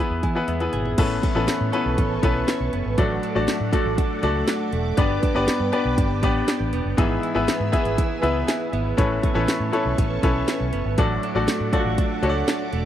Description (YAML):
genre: 1980s-style pop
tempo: 120 BPM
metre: 4/4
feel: straight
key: A major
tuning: A4 = 440 Hz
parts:
  - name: bright grand piano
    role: accompaniment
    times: 0.0-12.9 s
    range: G2 to G#5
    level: -24 LUFS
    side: left 3 dB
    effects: none
  - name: direct-recorded clean electric guitar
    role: riff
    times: 0.0-12.9 s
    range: E3 to A4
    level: -30 LUFS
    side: right 12 dB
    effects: analog chorus, slapback echo
  - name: vintage muted fingered electric bass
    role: bass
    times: 0.1-12.9 s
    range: E1 to E3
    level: -26 LUFS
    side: equal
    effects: none
  - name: house drum kit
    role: drums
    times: 0.2-12.8 s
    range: crash cymbal, hi-hat, kick drum, snare drum, tambourine, toms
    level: -23 LUFS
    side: equal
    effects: none
  - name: string machine, cellos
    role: sustained chords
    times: 1.0-12.9 s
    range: A4 to E6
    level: -31 LUFS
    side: right 3 dB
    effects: phaser, ensemble chorus
room: little or no reverb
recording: dry, close 1970s-style studio recording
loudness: -20 LUFS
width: side -11 dB against mid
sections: 1.0-12.9 A section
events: grand piano fill 0.0-1.0; drum fill 0.5-1.0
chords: 0.0 E; 1.0 Aadd9; 3.0 D/A; 5.0 G; 7.0 E/G#; 9.0 Aadd9; 11.0 D/A